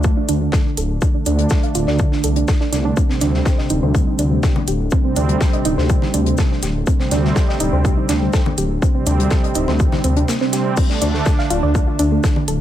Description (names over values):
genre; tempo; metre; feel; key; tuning
melodic techno; 123 BPM; 4/4; straight; unclear; A4 = 440 Hz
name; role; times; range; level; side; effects
soft round pluck; arpeggios; 0.0-12.5 s; G3 to F5; -23 LUFS; right 1 dB; chorus, sidechain pumping, dub echo
brassy analog pad; stabs; 0.0-12.4 s; C3 to D4; -22 LUFS; right 4 dB; chorus, sidechain pumping, dub echo
dark detuned saw bass; bass; 0.0-12.6 s; D1 to D2; -19 LUFS; left 1 dB; tube saturation, sidechain pumping
analog drone; drone; 0.0-12.6 s; D3 to A3; -28 LUFS; left 1 dB; none
deep reggae drum kit; drums; 0.0-12.6 s; hi-hat, shaker, snare drum; -30 LUFS; left 4 dB; sidechain pumping on hats, high-pass filter on hats, small room ambience, high-pass filter on snare, sidechain pumping on perc, high-pass filter on perc, high-pass filter on room
electronic kick drum; drums; 0.0-12.3 s; none; -17 LUFS; left 1 dB; small room ambience
house drum kit; drums; 0.3-12.6 s; congas, crash cymbal, hi-hat; -25 LUFS; left 2 dB; small room ambience
room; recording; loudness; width
light reverb, studio reverb; none; -15 LUFS; side -12 dB against mid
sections
0.0-12.6 A section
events
filter sweep on synth arpeggio sound 0.0-12.6; filter sweep on analog synth pad 0.0-12.6; break 10.3-10.8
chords
0.0 D5; 3.0 Cm/D; 10.8 Dm